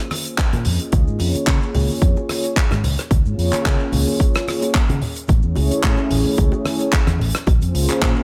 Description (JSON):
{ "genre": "nu-disco, nu disco", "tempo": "110 BPM", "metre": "4/4", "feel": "swing 54% on 16ths", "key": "Db major", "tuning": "A4 = 440 Hz", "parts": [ { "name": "warm analog pad", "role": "accompaniment", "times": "0.0-8.2 s", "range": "A3 to Eb5", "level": "-26 LUFS", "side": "equal", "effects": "chorus, sidechain pumping, digital delay" }, { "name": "damped 70s drum kit", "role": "drums", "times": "0.1-8.1 s", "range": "handclaps, hi-hat, rim click", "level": "-27 LUFS", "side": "equal", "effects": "small room reverb" }, { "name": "congas, bongos and maracas", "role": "percussion", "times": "0.1-8.2 s", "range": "none", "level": "-31 LUFS", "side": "equal", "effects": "none" }, { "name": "electronic kick drum", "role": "drums", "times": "0.4-8.1 s", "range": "none", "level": "-20 LUFS", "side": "equal", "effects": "small room reverb" }, { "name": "fingered electric bass with an envelope filter", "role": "bass", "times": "0.5-8.1 s", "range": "A1 to Db3", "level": "-22 LUFS", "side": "equal", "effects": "none" } ], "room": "studio reverb", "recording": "none", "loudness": "-19 LUFS", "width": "mono", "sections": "0.0-8.2 A section", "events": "none", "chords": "0.0 Bbm9; 0.9 Db6; 5.3 Amaj7; 7.5 Bbm9", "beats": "0.38 | 0.93 1.47 2.02 2.56 | 3.11 3.66 4.20 4.75 | 5.29 5.84 6.38 6.93 | 7.47 8.02" }